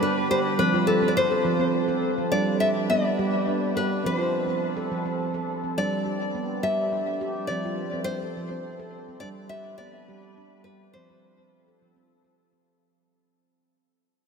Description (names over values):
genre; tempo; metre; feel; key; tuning
world meditative, meditative tuned percussion; 69 BPM (dotted quarters); 6/8; straight; unclear; A4 = 435 Hz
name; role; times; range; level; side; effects
nylon-string guitar; melody; 0.0-12.3 s; A4 to E5; -27 LUFS; left 3 dB; diffuse ambient delay
evolving wavetable pad; sustained chords; 0.0-12.7 s; F3 to B4; -31 LUFS; left 1 dB; phaser, built-in reverb
handpan; arpeggios; 0.0-12.7 s; F3 to A4; -27 LUFS; right 3 dB; none
room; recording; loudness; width
wet huge ambient reverb, RT60 7.2 s; dreamy mix soaked in reverb; -23 LUFS; side -5 dB against mid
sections
0.0-12.7 A section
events
fade-out 0.9-12.7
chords
0.0 G; 0.6 F; 2.3 G; 4.0 F; 5.8 G; 7.5 F; 9.2 G; 11.0 F